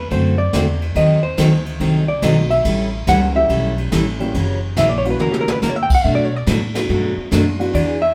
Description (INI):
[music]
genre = country, western swing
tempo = 142 BPM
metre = 4/4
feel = swing 66% on 8ths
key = unclear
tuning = A4 = 439 Hz
[part]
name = hollow-body jazz guitar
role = melody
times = 0.0-8.1 s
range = G4 to G5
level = -21 LUFS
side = equal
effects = none
[part]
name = upright bass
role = bass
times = 0.0-8.1 s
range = F#1 to B2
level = -24 LUFS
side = equal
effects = none
[part]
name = picked steel-string acoustic guitar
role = accompaniment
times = 0.1-8.0 s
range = B2 to A4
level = -21 LUFS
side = equal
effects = none
[part]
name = jazz brush drum kit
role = drums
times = 0.1-7.9 s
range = crash cymbal, hi-hat, kick drum, ride cymbal, snare drum, toms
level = -26 LUFS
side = equal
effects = none
[part]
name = dark upright piano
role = accompaniment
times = 2.2-7.7 s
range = E3 to G4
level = -27 LUFS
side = equal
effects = none
[sound]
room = wet studio reverb, RT60 0.8 s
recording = band playing live in one room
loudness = -17 LUFS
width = mono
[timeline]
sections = 0.0-8.1 A section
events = hollow-body jazz guitar solo 0.0-8.1; drum fill 5.2-5.6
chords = 0.0 D7; 1.0 D#dim7; 2.6 A7; 4.3 F#7b9; 6.0 Bm7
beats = 0.11 0.53 | 0.96 1.38 1.80 2.23 | 2.65 3.07 3.50 3.92 | 4.34 4.77 5.19 5.62 | 6.04 6.46 6.89 7.31 | 7.74